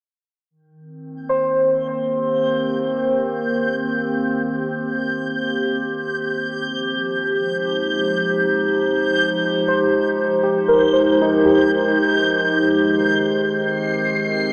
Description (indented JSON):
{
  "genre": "ambient",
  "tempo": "free time",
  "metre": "none",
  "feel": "none",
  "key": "unclear",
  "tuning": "A4 = 444 Hz",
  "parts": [
    { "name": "warbly tape-like pad", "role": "sustained chords", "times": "0.9-14.5 s", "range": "Eb3 to C5", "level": "-23 LUFS", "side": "equal", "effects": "chorus, built-in reverb" },
    { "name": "backwards swelling texture", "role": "texture", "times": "2.4-14.5 s", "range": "G6 to C7", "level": "-26 LUFS", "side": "equal", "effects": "built-in reverb" },
    { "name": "muted felt-like synth keys", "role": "arpeggios", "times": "1.3-12.8 s", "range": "Eb4 to C5", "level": "-22 LUFS", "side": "equal", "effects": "chorus, diffuse ambient delay" }
  ],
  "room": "wet cathedral reverb, RT60 5.6 s",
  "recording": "in a vast, echoing space, small speaker sound",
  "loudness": "-19 LUFS",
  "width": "mono",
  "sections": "0.5-14.5 A section",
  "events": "fade-in on synth texture 0.5-14.5",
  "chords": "0.5 Cm7; 6.7 Fm9; 12.8 Abmaj7"
}